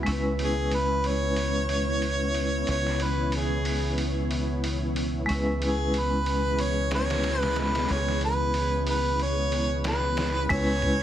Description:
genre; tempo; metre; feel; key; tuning
trip hop; 92 BPM; 4/4; swing 59% on 16ths; C# minor; A4 = 440 Hz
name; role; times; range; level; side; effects
vibraphone with medium hard mallets; accompaniment; 0.0-11.0 s; G#3 to B4; -30 LUFS; equal; tremolo, tape echo
string machine, cellos; sustained chords; 0.0-11.0 s; B3 to C#5; -33 LUFS; equal; ensemble chorus
deep dub fingered electric bass; bass; 0.0-11.0 s; C#2; -29 LUFS; equal; none
trip hop sampler-style drum kit; drums; 0.1-11.0 s; crash cymbal, hi-hat, kick drum, snare drum; -35 LUFS; equal; high-pass filter on hats, high-pass filter on snare, high-pass filter on kick, high-pass filter on cymbals
warm harmonica; melody; 0.4-11.0 s; G#4 to C#5; -28 LUFS; equal; tape echo
room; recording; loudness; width
light reverb; heavily compressed radio sound; -24 LUFS; side -11 dB against mid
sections
0.0-10.5 A section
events
none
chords
0.0 C#m7

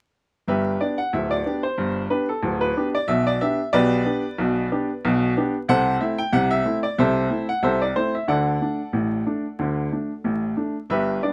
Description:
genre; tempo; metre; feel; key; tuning
ragtime piano; 92 BPM; 2/4; swing 54% on 16ths; G major; A4 = 440 Hz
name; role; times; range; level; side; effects
bright upright piano; solo; 0.5-11.3 s; D1 to G5; -23 LUFS; equal; none
room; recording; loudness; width
light reverb; close, detailed microphones, vinyl crackle; -23 LUFS; mono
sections
0.5-11.3 A section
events
none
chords
0.5 G; 3.1 G/B; 5.7 Am/C; 8.3 D

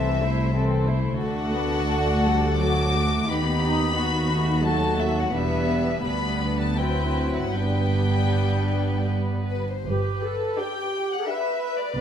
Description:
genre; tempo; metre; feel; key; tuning
classical, slow romantic movement for string orchestra; 75-92 BPM; 3/4; rubato; G major; A4 = 440 Hz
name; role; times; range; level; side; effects
warm chamber violin section; melody; 0.0-12.0 s; B4 to D6; -29 LUFS; left 6 dB; none
warm chamber violin section; second line; 0.0-11.8 s; C4 to C5; -28 LUFS; left 1 dB; none
warm studio viola section; accompaniment; 0.0-12.0 s; E3 to B4; -28 LUFS; equal; none
warm chamber cello section; bass; 0.0-12.0 s; C2 to B2; -28 LUFS; right 2 dB; none
warm chamber double bass section; bass; 0.0-12.0 s; E1 to D#2; -27 LUFS; right 1 dB; none
room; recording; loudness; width
moderate scoring stage reverb, RT60 1.6 s; none; -21 LUFS; side -8 dB against mid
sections
0.0-9.9 A section; 9.9-12.0 A section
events
none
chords
0.0 Am/C; 1.2 D; 3.3 B7/D#; 5.3 Em7; 6.0 G/D; 6.8 D13; 7.6 G

